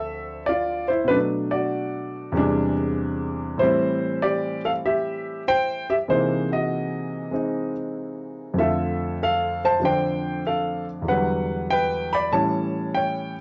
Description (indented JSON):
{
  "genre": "solo jazz",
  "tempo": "96 BPM",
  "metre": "4/4",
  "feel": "swing 67% on 8ths",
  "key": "unclear",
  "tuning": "A4 = 440 Hz",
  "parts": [
    { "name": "clear grand piano", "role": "solo", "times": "0.0-13.4 s", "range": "D2 to B5", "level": "-24 LUFS", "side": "equal", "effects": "none" }
  ],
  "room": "moderate studio reverb, RT60 0.7 s",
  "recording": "nothing above 7.7 kHz",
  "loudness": "-24 LUFS",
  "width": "mono",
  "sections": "0.0-13.4 A section",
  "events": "none",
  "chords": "0.0 Dm7; 1.1 Bm7; 2.3 E7alt; 3.6 Am7; 6.1 C7alt; 8.6 F6; 11.1 Em9; 12.3 A7"
}